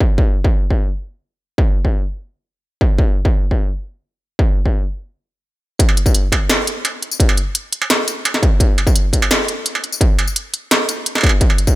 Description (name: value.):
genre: drum and bass.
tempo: 171 BPM.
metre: 4/4.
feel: half-time.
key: none.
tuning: none.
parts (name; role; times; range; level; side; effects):
electronic kick drum; drums; 0.0-11.7 s; none; -14 LUFS; equal; distortion, studio reverb.
industrial drum kit; drums; 5.8-11.7 s; hi-hat, snare drum, struck metal, tambourine; -16 LUFS; right 1 dB; studio reverb.
room: little or no reverb.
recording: none.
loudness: -14 LUFS.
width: side -17 dB against mid.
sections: 0.0-5.8 A section; 5.8-11.8 B section.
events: stop 5.1-5.8; drop 5.8-11.8.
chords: none.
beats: | 0.18 0.53 0.88 1.24 | 1.59 1.94 2.29 2.64 | 2.99 3.34 3.69 4.04 | 4.39 4.74 5.09 5.45 | 5.80 6.15 6.50 6.85 | 7.20 7.55 7.90 8.25 | 8.60 8.95 9.30 9.66 | 10.01 10.36 10.71 11.06 | 11.41.